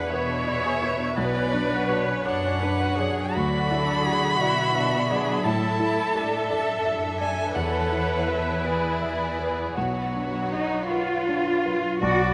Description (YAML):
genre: cinematic, emotional film score for orchestra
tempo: 53-58 BPM (dotted quarters)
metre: 6/8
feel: rubato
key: unclear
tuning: A4 = 440 Hz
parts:
  - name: warm symphonic violin section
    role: melody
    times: 0.0-12.3 s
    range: B4 to E5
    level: -37 LUFS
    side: equal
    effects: none
  - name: warm violin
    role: melody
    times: 0.0-11.6 s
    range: C#5 to B5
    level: -32 LUFS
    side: equal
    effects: none
  - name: warm symphonic violin section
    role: second line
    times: 0.0-12.3 s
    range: B3 to B4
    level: -33 LUFS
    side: equal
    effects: none
  - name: rich symphonic viola section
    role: accompaniment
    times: 0.0-12.3 s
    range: F#3 to C#5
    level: -33 LUFS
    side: equal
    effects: none
  - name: warm grand piano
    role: accompaniment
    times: 0.0-12.3 s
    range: B1 to E5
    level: -32 LUFS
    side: equal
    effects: none
  - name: concert harp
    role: arpeggios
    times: 0.0-12.3 s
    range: A2 to C#5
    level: -37 LUFS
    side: equal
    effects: none
  - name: warm symphonic cello section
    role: bass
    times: 0.1-12.3 s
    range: E2 to F#4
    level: -31 LUFS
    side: equal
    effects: none
  - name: clear clarinet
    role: second line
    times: 12.0-12.3 s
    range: D5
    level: -27 LUFS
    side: equal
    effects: none
  - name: dark symphonic double bass section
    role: bass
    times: 12.0-12.3 s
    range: B1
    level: -31 LUFS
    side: equal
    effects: none
room: wet scoring stage reverb, RT60 2.0 s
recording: nothing above 10.4 kHz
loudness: -25 LUFS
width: mono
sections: 0.0-12.0 A section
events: none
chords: 0.0 E7; 1.2 Bmadd9; 3.3 Dadd9; 5.4 Asus4; 7.6 E7; 9.8 Bmadd9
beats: 0.12 | 1.17 2.25 | 3.35 4.39 | 5.44 6.50 | 7.55 8.65 | 9.76 10.89 | 12.02